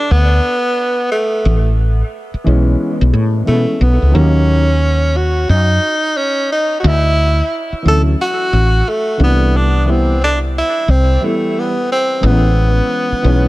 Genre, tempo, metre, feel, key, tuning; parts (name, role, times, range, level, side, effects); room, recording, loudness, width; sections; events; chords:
hip hop, jazz-hop; 89 BPM; 4/4; swing 62% on 16ths; A4 = 440 Hz
breathy tenor saxophone; melody; 0.0-13.5 s; A3 to A4; -16 LUFS; equal; dub echo
woody fretless electric bass; bass; 0.1-13.5 s; A1 to B2; -12 LUFS; equal; wide subtle chorus
dark grand piano; accompaniment; 2.4-13.5 s; D#3 to E4; -19 LUFS; equal; dub echo
small room ambience; echo-heavy mix; -12 LUFS; side -18 dB against mid
0.0-13.5 A section
0.0 Cmaj7sus2 (rootless); 1.4 Amaj9; 4.1 D#m7; 6.8 Dadd9; 9.2 Cmaj9; 12.2 Amaj9